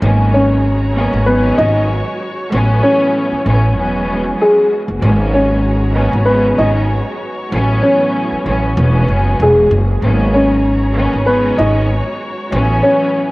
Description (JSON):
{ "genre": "hip hop", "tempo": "96 BPM", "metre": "4/4", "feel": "swing 55% on 16ths", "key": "G# minor", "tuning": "A4 = 441 Hz", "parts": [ { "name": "warm studio string section", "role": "accompaniment", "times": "0.0-13.3 s", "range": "E2 to C#4", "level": "-18 LUFS", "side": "right 1 dB", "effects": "high-pass filter, low-pass filter, cassette tape" }, { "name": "rich studio string section", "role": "sustained chords", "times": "0.0-13.3 s", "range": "E3 to A#5", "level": "-26 LUFS", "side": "equal", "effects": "high-pass filter, low-pass filter, cassette tape" }, { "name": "upright bass", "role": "bass", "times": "0.0-12.8 s", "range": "E1 to A1", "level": "-15 LUFS", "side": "equal", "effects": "none" }, { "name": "warm upright piano", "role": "melody", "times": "0.3-13.3 s", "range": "G#3 to D#5", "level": "-15 LUFS", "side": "equal", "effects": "high-pass filter, low-pass filter, cassette tape" } ], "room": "light reverb, small room ambience", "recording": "home recording on cassette", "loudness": "-11 LUFS", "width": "side -21 dB against mid", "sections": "0.0-13.3 A section", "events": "none", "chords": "0.0 G#m11; 2.5 A6; 3.8 E69; 5.0 G#m11; 7.5 A6; 8.8 E69; 10.0 G#m11; 12.5 A6" }